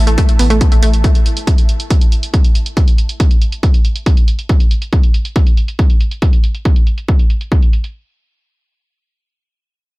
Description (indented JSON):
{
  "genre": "driving peak-time techno",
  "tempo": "139 BPM",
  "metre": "4/4",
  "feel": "straight",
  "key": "unclear",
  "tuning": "A4 = 440 Hz",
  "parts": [
    { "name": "saturated sub bass", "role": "bass", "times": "0.0-1.0 s", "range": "A1", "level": "-13 LUFS", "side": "equal", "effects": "overdrive, sidechain pumping, low-pass filter" },
    { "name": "ethereal airy pad", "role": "texture", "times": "0.0-1.0 s", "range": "A3 to A5", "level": "-28 LUFS", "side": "equal", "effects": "ensemble chorus, built-in reverb, sidechain pumping" },
    { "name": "wide unison pluck", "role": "riff", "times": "0.1-0.9 s", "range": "A3 to B3", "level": "-20 LUFS", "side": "equal", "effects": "tube saturation, sidechain pumping, ping-pong delay" },
    { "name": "electronic hi-hat", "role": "drums", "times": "0.1-7.9 s", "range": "none", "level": "-25 LUFS", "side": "right 2 dB", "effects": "sidechain pumping on hats, low-pass filter on hats, sidechain pumping on cymbals, low-pass filter on cymbals" },
    { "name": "electronic kick drum", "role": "drums", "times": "0.2-7.6 s", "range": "none", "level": "-11 LUFS", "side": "equal", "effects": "none" }
  ],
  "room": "digital ambience",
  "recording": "none",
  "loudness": "-11 LUFS",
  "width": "side -22 dB against mid",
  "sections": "0.0-7.9 A section",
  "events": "none",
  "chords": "0.0 A5"
}